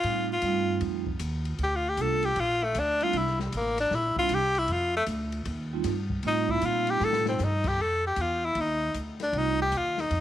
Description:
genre	jazz, small-group swing and bop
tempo	155 BPM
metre	4/4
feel	swing 66% on 8ths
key	F mixolydian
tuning	A4 = 440 Hz
part	bright tenor saxophone	melody	0.0-10.2 s	G3 to A4	-26 LUFS	left 2 dB	none
part	vibraphone with medium mallets	accompaniment	0.0-9.6 s	G3 to F4	-32 LUFS	right 15 dB	none
part	upright bass	bass	0.0-10.2 s	A1 to Bb2	-32 LUFS	equal	none
part	open jazz drum kit	drums	0.0-10.2 s	crash cymbal, hi-hat, kick drum, ride cymbal, snare drum	-38 LUFS	left 4 dB	none
room	light reverb, small room reverb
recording	1960s-style stereo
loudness	-25 LUFS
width	side -12 dB against mid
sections	0.0-7.8 A section; 7.8-10.2 A section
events	tenor saxophone solo 0.0-10.2; drum fill 7.0-7.4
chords	0.0 F7; 1.6 Gm7; 3.1 C7; 4.7 F7; 7.8 F7(no3)

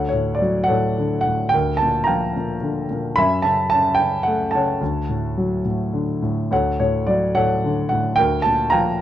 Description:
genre	classical, lyrical solo piano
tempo	108 BPM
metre	3/4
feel	uneven beats, rubato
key	D major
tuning	A4 = 441 Hz
part	dark grand piano	solo	0.0-9.0 s	D2 to B5	-18 LUFS	equal	none
room	moderate studio ambience, RT60 0.5 s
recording	dark, warm production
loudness	-18 LUFS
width	side -11 dB against mid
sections	0.0-9.0 A section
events	none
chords	0.0 Dmaj7; 1.5 Bb6/D; 3.2 F#m7; 4.8 Dmaj7; 8.2 Bb6/D

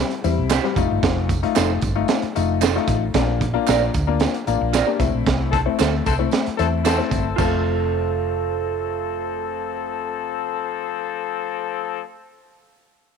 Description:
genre	uptempo 1960s-style soul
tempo	113 BPM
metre	4/4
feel	straight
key	F major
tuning	A4 = 440 Hz
part	warm upright piano	accompaniment	0.0-12.0 s	G3 to G4	-24 LUFS	left 12 dB	none
part	crunchy breakbeat drum kit	drums	0.1-7.5 s	crash cymbal, hi-hat, kick drum, snare drum	-23 LUFS	right 4 dB	none
part	hollow-body short-scale fingered electric bass	bass	0.2-12.0 s	F1 to E2	-24 LUFS	equal	none
part	tambourine and handclaps	percussion	0.2-7.6 s	none	-33 LUFS	right 12 dB	none
part	electric guitar through a small old amp	stabs	0.5-12.1 s	Eb4 to D5	-26 LUFS	right 13 dB	none
part	clear horn section	second line	5.5-12.0 s	E3 to A4	-26 LUFS	left 11 dB	none
room	moderate spring reverb, RT60 2.1 s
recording	1960s-style stereo with parts hard left and right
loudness	-19 LUFS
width	side -6 dB against mid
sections	0.0-7.4 A section; 7.4-11.6 B section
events	band accent 5.3-7.4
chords	0.0 C; 0.8 F7; 3.1 Bb; 5.0 Am; 7.4 F

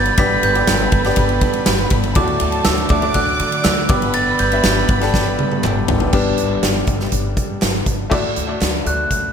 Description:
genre	piano-driven pop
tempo	121 BPM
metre	4/4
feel	straight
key	G major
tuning	A4 = 440 Hz
part	glockenspiel with soft plastic mallets	melody	0.0-5.8, 8.9-9.3 s	D6 to B6	-21 LUFS	right 3 dB	none
part	warm studio violin section	second line	0.0-6.1 s	A4 to D6	-25 LUFS	right 1 dB	none
part	bright upright piano	accompaniment	0.0-9.3 s	G2 to E5	-22 LUFS	left 4 dB	none
part	warm analog pad	sustained chords	0.0-8.1 s	D3 to A4	-31 LUFS	right 1 dB	none
part	picked steel-string acoustic guitar	riff	0.0-6.1 s	D3 to B4	-25 LUFS	right 6 dB	none
part	upright bass	bass	0.0-9.3 s	G1 to D3	-22 LUFS	equal	none
part	huge arena drum kit	drums	0.1-9.2 s	crash cymbal, hi-hat, kick drum, ride cymbal, snare drum, toms	-18 LUFS	equal	gated reverb
part	group handclap	percussion	0.7-8.7 s	none	-33 LUFS	right 6 dB	none
room	light reverb, small room ambience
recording	bright 1980s-style digital production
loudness	-14 LUFS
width	side -7 dB against mid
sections	0.0-6.1 A section; 6.1-8.1 B section; 8.1-9.3 C section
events	drum fill 5.1-6.1; upright piano solo 6.1-8.1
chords	0.0 G; 2.2 D; 3.9 G; 8.1 D

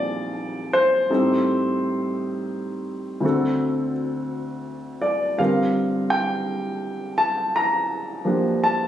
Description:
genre	jazz ballad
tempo	56 BPM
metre	4/4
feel	swing 66% on 8ths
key	unclear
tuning	A4 = 440 Hz
part	warm baby grand piano	solo	0.0-8.9 s	D2 to Bb5	-21 LUFS	equal	none
room	light reverb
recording	recorded on a phone in the room, studio reverb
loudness	-20 LUFS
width	side -11 dB against mid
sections	0.0-8.9 A section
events	none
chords	0.0 Ebmaj9#11; 1.1 Am7b5; 3.2 D7; 5.4 Gm11

